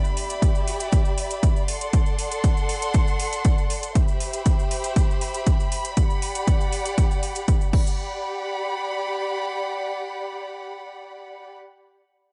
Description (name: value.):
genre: nu-disco, nu disco.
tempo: 119 BPM.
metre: 4/4.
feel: straight.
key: G major.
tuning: A4 = 440 Hz.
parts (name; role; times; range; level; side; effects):
rich studio violin section; sustained chords; 0.0-11.5 s; G4 to C6; -31 LUFS; equal; sidechain pumping.
cabasa; percussion; 0.0-8.0 s; none; -42 LUFS; equal; none.
house drum kit; drums; 0.2-7.8 s; crash cymbal, hi-hat; -34 LUFS; equal; overdrive.
electronic kick drum; drums; 0.4-7.8 s; none; -23 LUFS; equal; overdrive.
room: digital ambience.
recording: nothing above 10.8 kHz.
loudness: -23 LUFS.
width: mono.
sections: 0.0-8.0 A section; 8.0-12.0 B section.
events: none.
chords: 0.0 Em7; 1.7 D7; 4.0 Cmaj7; 6.0 Gmaj7.